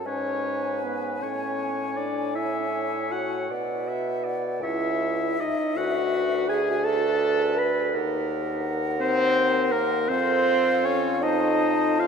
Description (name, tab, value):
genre	classical, slow romantic movement for wind quintet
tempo	54 BPM (dotted quarters)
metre	6/8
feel	uneven beats, rubato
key	unclear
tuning	A4 = 438 Hz
part	mellow hollow concert flute	melody	0.0-12.1 s	E5 to A5	-32 LUFS	left 6 dB	none
part	warm clarinet	accompaniment	0.0-12.1 s	A4 to E5	-33 LUFS	right 5 dB	none
part	dark bassoon	bass	0.0-12.1 s	C#2 to B2	-30 LUFS	right 3 dB	none
part	clear oboe	second line	0.1-12.1 s	Bb4 to B5	-30 LUFS	left 3 dB	none
part	warm French horn	accompaniment	0.1-12.1 s	Bb3 to B4	-26 LUFS	equal	none
room	wet cathedral reverb, RT60 5.1 s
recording	in a vast, echoing space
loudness	-22 LUFS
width	side -6 dB against mid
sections	0.0-12.1 A section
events	none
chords	0.1 G#madd11; 1.2 Dmaj9#11/A; 3.5 Bm; 4.6 C#madd9; 5.8 Bm/D; 7.9 Cm7b5/Eb; 10.1 F